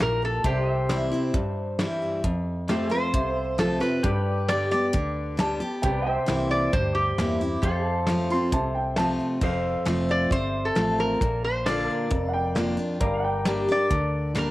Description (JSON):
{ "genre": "honky-tonk and classic country", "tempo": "134 BPM", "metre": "4/4", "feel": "straight", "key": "F major", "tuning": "A4 = 440 Hz", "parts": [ { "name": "lap resonator guitar", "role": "melody", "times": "0.0-14.5 s", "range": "G4 to D5", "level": "-28 LUFS", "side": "equal", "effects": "cassette tape" }, { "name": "picked steel-string acoustic guitar", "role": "accompaniment", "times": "0.0-14.5 s", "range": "F2 to G4", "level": "-27 LUFS", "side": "equal", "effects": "cassette tape" }, { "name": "pedal steel guitar", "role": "sustained chords", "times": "0.0-14.5 s", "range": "G4 to G5", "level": "-31 LUFS", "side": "equal", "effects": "cassette tape" }, { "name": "vintage muted fingered electric bass", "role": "bass", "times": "0.0-14.5 s", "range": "F1 to G2", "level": "-31 LUFS", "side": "equal", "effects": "none" }, { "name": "soft brush drum kit", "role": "drums", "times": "0.0-14.5 s", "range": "crash cymbal, hi-hat, kick drum, snare drum", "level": "-29 LUFS", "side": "equal", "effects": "cassette tape" }, { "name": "dark upright piano", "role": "second line", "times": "5.4-9.3, 12.3-13.6 s", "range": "Gb5 to C6", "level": "-29 LUFS", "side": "right 1 dB", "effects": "cassette tape" } ], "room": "moderate spring reverb, RT60 1.8 s, small room ambience", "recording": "home recording on cassette", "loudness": "-22 LUFS", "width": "side -17 dB against mid", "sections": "0.0-9.4 A section; 9.4-14.5 A section", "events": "none", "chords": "0.4 C; 2.2 F; 4.0 G; 5.8 C7; 7.6 F; 11.2 Bb; 13.0 Gm", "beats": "0.00 | 0.45 0.90 1.34 1.79 | 2.24 2.69 3.14 3.59 | 4.04 4.49 4.94 5.39 | 5.83 6.28 6.73 7.18 | 7.63 8.08 8.53 8.97 | 9.42 9.87 10.32 10.77 | 11.22 11.66 12.11 12.56 | 13.01 13.46 13.91 14.36" }